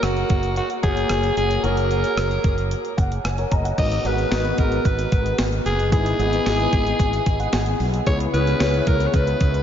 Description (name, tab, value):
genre	1980s-style pop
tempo	112 BPM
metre	4/4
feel	straight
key	unclear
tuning	A4 = 440 Hz
part	raspy alto saxophone	melody	0.0-9.6 s	F#4 to D#5	-24 LUFS	equal	diffuse ambient delay
part	warm grand piano	accompaniment	0.0-9.6 s	G#2 to A#5	-25 LUFS	left 2 dB	ensemble chorus
part	fretless electric bass	bass	0.0-9.6 s	F#1 to C#2	-23 LUFS	equal	none
part	clean 12-bit digital drum machine	drums	0.0-9.6 s	crash cymbal, hi-hat, kick drum, rim click, snare drum	-24 LUFS	equal	none
room	wet cathedral reverb, RT60 5.7 s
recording	dreamy mix soaked in reverb, nothing above 7.5 kHz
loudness	-18 LUFS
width	side -9 dB against mid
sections	0.0-3.8 A section; 3.8-9.6 B section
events	grand piano fill 2.7-3.8, 7.0-8.1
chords	0.0 F#add9; 3.8 G#m7; 5.9 Emaj7/G#; 8.1 C#m7